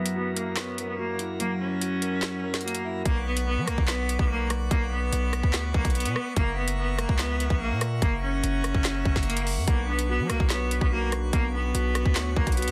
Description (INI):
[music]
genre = hip hop, drill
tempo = 145 BPM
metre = 4/4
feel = half-time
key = B harmonic minor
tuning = A4 = 440 Hz
[part]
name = rich cello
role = melody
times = 0.0-12.7 s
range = A#3 to C#4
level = -33 LUFS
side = equal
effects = low-pass filter, tape echo
[part]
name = mellow electric guitar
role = accompaniment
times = 0.0-3.1, 9.7-12.7 s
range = F#3 to C#5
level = -34 LUFS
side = equal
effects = low-pass filter
[part]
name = pipe organ, plenum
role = sustained chords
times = 0.0-12.7 s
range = F#2 to C#6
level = -39 LUFS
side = equal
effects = low-pass filter
[part]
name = drill drum kit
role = drums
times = 0.1-12.7 s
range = handclaps, hi-hat, kick drum, rim click, snare drum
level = -29 LUFS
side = equal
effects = none
[part]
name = distorted 808-style bass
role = bass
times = 3.1-12.7 s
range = F#1 to F#3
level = -30 LUFS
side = equal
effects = distortion
[sound]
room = digital ambience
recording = dense, heavily limited modern master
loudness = -26 LUFS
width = mono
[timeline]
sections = 0.0-3.1 A section; 3.1-12.7 B section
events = filter sweep 0.0-3.1; kick muted 1.4-3.1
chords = 0.0 F#7; 3.1 Bmadd9; 6.4 F#7; 9.7 Bmadd9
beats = 0.16 0.57 0.99 | 1.40 1.81 2.23 2.64 | 3.06 3.47 3.88 4.30 | 4.71 5.12 5.54 5.95 | 6.37 6.78 7.19 7.61 | 8.02 8.43 8.85 9.26 | 9.68 10.09 10.50 10.92 | 11.33 11.74 12.16 12.57